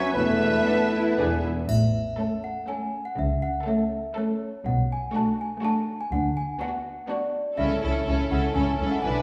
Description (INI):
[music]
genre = cinematic, playful, whimsical film cue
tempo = 122 BPM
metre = 3/4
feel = straight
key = A major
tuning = A4 = 440 Hz
[part]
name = celesta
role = melody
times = 0.0-9.2 s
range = C#5 to C#6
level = -33 LUFS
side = equal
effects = none
[part]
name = bright clarinet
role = second line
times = 0.0-1.3 s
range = B4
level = -35 LUFS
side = equal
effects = none
[part]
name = bright silver concert flute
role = second line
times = 0.0-1.4 s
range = G#5 to A5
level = -38 LUFS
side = equal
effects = none
[part]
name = rich studio violin section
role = second line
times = 0.0-9.2 s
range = C#4 to E5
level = -36 LUFS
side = equal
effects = none
[part]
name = warm oboe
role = second line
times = 0.0-1.4 s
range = B4 to C#5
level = -33 LUFS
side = equal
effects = none
[part]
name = dark bassoon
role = accompaniment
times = 0.0-1.3 s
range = E3 to F#3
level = -32 LUFS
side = equal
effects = none
[part]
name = rich studio cello section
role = bass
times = 0.0-9.1 s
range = A2 to C#4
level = -33 LUFS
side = equal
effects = none
[part]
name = mellow French horn section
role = sustained chords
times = 0.1-1.4 s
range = G#3 to B3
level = -29 LUFS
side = equal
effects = none
[part]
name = dark tuba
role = bass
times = 0.1-1.6 s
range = E1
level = -35 LUFS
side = equal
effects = none
[part]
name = rich studio double bass section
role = bass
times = 0.2-9.1 s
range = A1 to E2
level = -31 LUFS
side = equal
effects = none
[part]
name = rich studio violin section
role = melody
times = 0.7-9.2 s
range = F#4 to B4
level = -38 LUFS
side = equal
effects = none
[part]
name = rich studio viola section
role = accompaniment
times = 0.7-9.2 s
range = A3 to E4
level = -31 LUFS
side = equal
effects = none
[part]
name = triangle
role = percussion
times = 1.7-2.6 s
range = none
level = -46 LUFS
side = equal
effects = none
[sound]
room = wet recital hall reverb, RT60 1.5 s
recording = heard from further back in the room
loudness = -26 LUFS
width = mono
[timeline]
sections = 0.0-1.7 A section; 1.7-9.2 B section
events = none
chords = 0.1 Esus4; 1.2 E; 1.7 A; 3.2 A/C#; 4.7 Bm7; 6.1 Bm/D; 7.6 A/C#